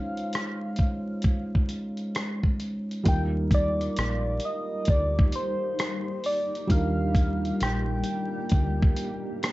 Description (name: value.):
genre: lo-fi hip hop.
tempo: 66 BPM.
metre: 4/4.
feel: swing 64% on 16ths.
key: Eb major.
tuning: A4 = 438 Hz.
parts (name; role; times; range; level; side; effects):
soft struck synth lead; melody; 0.0-9.5 s; C5 to G5; -31 LUFS; equal; chorus, low-pass filter.
felt-muted upright piano; accompaniment; 0.0-9.5 s; G3 to C5; -31 LUFS; right 1 dB; low-pass filter.
dusty soul sampler-style drum kit; drums; 0.2-9.5 s; hi-hat, kick drum, rim click; -25 LUFS; equal; none.
granular cloud pad; sustained chords; 4.5-9.5 s; G3 to G4; -36 LUFS; left 2 dB; built-in reverb, low-pass filter.
deep dub fingered electric bass; bass; 3.1-8.9 s; Bb1 to Eb2; -28 LUFS; equal; none.
room: light reverb.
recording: vinyl crackle, nothing above 7.8 kHz.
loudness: -24 LUFS.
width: side -18 dB against mid.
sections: 0.0-3.1 A section; 3.1-9.5 B section.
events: none.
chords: 0.0 Dbmaj7; 3.1 Ebmaj7.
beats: 0.33 1.24 2.15 | 3.06 3.97 4.88 5.79 | 6.70 7.61 8.51 9.42.